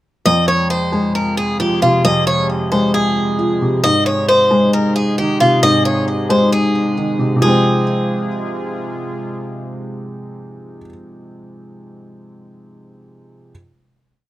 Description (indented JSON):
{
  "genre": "hip hop, trap",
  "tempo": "134 BPM",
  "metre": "4/4",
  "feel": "half-time",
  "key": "F minor",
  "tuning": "A4 = 436 Hz",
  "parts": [
    { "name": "picked swing-style acoustic guitar", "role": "melody", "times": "0.3-8.7 s", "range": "F4 to Eb5", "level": "-16 LUFS", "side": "equal", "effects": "digital delay" },
    { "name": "felt-muted upright piano", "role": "accompaniment", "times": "0.3-13.5 s", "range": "F2 to C4", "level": "-17 LUFS", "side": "equal", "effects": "none" },
    { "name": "sweeping resonant pad", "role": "sustained chords", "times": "0.3-10.8 s", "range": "C3 to Ab4", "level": "-26 LUFS", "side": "right 1 dB", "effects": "chorus" }
  ],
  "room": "light reverb",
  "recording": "rough home demo mix",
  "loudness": "-13 LUFS",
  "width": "side -15 dB against mid",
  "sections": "0.3-7.4 breakdown; 7.4-11.0 final chord",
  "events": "none",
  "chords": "0.3 Fm; 3.8 Ab; 7.4 Fm"
}